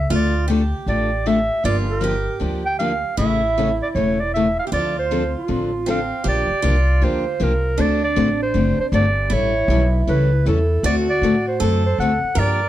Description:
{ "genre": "acoustic string swing (jazz manouche)", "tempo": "156 BPM", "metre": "4/4", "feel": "swing 64% on 8ths", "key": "D minor", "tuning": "A4 = 440 Hz", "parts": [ { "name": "mellow clarinet", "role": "melody", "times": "0.0-12.7 s", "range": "F4 to G5", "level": "-22 LUFS", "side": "right 2 dB", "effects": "plate reverb" }, { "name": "upright bass", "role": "bass", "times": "0.0-12.7 s", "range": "E1 to A2", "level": "-21 LUFS", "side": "equal", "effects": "none" }, { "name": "picked steel-string acoustic guitar", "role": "second line", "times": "0.1-12.7 s", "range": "C4 to Bb4", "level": "-26 LUFS", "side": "right 4 dB", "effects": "none" }, { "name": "picked steel-string acoustic guitar", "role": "accompaniment", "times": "0.1-12.6 s", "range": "C#3 to A4", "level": "-23 LUFS", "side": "left 3 dB", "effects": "none" } ], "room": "moderate studio reverb, RT60 0.8 s", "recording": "dark, warm production", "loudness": "-17 LUFS", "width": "side -13 dB against mid", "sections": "0.0-6.3 A section; 6.3-12.7 B section", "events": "none", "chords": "0.1 Dm; 1.6 Gm7; 3.2 A; 4.7 Dm7; 6.3 Gm7; 7.8 D7; 9.3 A7; 10.8 D7" }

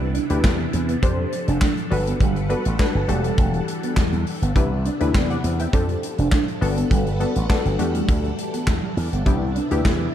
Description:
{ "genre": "early-eighties boogie funk", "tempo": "102 BPM", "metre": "4/4", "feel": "straight", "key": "E minor", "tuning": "A4 = 440 Hz", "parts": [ { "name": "funky polysynth comp", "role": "accompaniment", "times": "0.0-10.1 s", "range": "A3 to G5", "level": "-26 LUFS", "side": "left 3 dB", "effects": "chorus" }, { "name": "phased string machine", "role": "sustained chords", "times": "0.0-10.1 s", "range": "C3 to F#5", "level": "-29 LUFS", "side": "left 1 dB", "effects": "ensemble chorus, phaser" }, { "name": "mellow electric guitar", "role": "riff", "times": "0.0-9.9 s", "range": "G3 to D4", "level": "-29 LUFS", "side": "right 5 dB", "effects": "lush chorus" }, { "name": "slap bass with an envelope filter", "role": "bass", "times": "0.0-10.1 s", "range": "E1 to F2", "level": "-23 LUFS", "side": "equal", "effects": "none" }, { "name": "modern studio drum kit", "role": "drums", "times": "0.1-10.0 s", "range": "handclaps, hi-hat, kick drum, snare drum", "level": "-22 LUFS", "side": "equal", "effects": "none" } ], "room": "light reverb, studio reverb", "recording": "dark, warm production", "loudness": "-19 LUFS", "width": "side -10 dB against mid", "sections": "0.0-10.1 A section", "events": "none", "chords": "0.0 Cmaj9; 1.0 F6; 1.9 Gmaj9; 3.1 Em11; 4.6 Cmaj9; 5.7 F6; 6.6 Gmaj9; 7.8 Em11; 9.3 Cmaj9" }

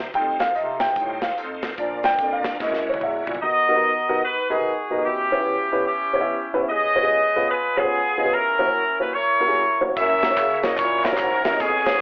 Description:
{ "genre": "uptempo gospel", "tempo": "147 BPM", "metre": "4/4", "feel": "swing 64% on 8ths", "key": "unclear", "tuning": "A4 = 444 Hz", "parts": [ { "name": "bright tonewheel organ", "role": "sustained chords", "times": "0.0-3.4, 10.0-12.0 s", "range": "G3 to D5", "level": "-32 LUFS", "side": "equal", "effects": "slow rotary speaker, chorus vibrato" }, { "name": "mellow bass clarinet", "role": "bass", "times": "0.0-3.4, 10.0-11.9 s", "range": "Fb2 to C#3", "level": "-28 LUFS", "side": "equal", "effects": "none" }, { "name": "dark baby grand piano", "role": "accompaniment", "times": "0.1-12.0 s", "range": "B2 to G5", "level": "-23 LUFS", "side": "equal", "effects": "none" }, { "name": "modern studio drum kit", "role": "drums", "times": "0.1-3.4, 10.0-11.9 s", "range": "hi-hat, kick drum, snare drum, toms", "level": "-30 LUFS", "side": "equal", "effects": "none" }, { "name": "clear horn section", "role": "melody", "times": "3.4-12.0 s", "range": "B3 to E5", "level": "-20 LUFS", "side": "equal", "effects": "none" }, { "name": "tambourine and handclaps", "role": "percussion", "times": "10.0-11.9 s", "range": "none", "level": "-31 LUFS", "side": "equal", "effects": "none" } ], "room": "moderate scoring stage reverb, RT60 1.5 s, studio ambience", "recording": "worn, warbling old tape, cassette tape, warbly pitch drift, telephone sound", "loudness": "-18 LUFS", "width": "side -37 dB against mid", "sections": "0.0-3.4 A section; 3.4-12.0 B section", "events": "grand piano solo 0.0-3.4; drum fill 2.6-3.4", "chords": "0.1 F7; 1.8 Bb; 2.6 Gb7; 3.4 Bmaj7; 5.1 Em6/B; 6.7 C#7; 8.3 F#7" }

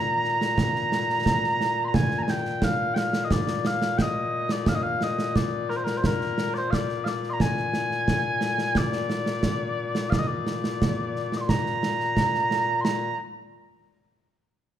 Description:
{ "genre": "scottish traditional, Scottish pipe music", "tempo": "88 BPM", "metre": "4/4", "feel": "straight", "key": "Bb mixolydian", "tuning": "A4 = 440 Hz", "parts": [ { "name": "mellow small bagpipes", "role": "melody", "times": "0.0-13.2 s", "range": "Bb2 to D6", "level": "-25 LUFS", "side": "left 1 dB", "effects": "none" }, { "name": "concert snare drum and concert bass drum", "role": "drums", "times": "0.2-13.0 s", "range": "none", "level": "-27 LUFS", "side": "right 2 dB", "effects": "none" } ], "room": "moderate recital hall reverb, RT60 1.4 s", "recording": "none", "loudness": "-23 LUFS", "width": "side -10 dB against mid", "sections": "0.0-1.9 A section; 1.9-12.9 B section; 12.9-14.8 C section", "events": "none", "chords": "none" }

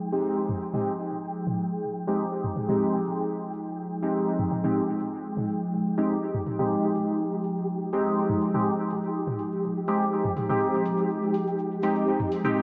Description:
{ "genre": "dub techno", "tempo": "123 BPM", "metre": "4/4", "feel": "straight", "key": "F minor", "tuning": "A4 = 443 Hz", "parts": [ { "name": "airy breathy pad", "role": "sustained chords", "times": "0.0-12.6 s", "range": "F3 to Ab4", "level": "-32 LUFS", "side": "equal", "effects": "chorus, phaser" }, { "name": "flickering grainy texture", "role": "texture", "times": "0.0-12.6 s", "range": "G4 to G5", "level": "-38 LUFS", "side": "equal", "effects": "built-in reverb" }, { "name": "resonant sweep polysynth", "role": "stabs", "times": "0.1-12.6 s", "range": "Ab3 to G4", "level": "-30 LUFS", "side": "equal", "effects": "chorus, phaser, dub echo" }, { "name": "electronic hi-hat", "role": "drums", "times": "0.1-12.4 s", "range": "none", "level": "-62 LUFS", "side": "equal", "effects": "dub echo" }, { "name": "egg shaker", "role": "percussion", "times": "0.1-12.6 s", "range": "none", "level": "-69 LUFS", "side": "equal", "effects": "none" }, { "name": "electronic toms", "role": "percussion", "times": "0.5-12.5 s", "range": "none", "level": "-36 LUFS", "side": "equal", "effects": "dub echo" } ], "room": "moderate spring reverb, RT60 2.3 s", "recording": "echo-heavy mix, vinyl crackle, low-pass filter, faint mains hum", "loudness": "-27 LUFS", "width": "mono", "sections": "0.0-12.6 A section", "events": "filter sweep on analog synth pad 0.0-12.6; filter sweep 0.0-12.6", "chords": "0.0 Fm9" }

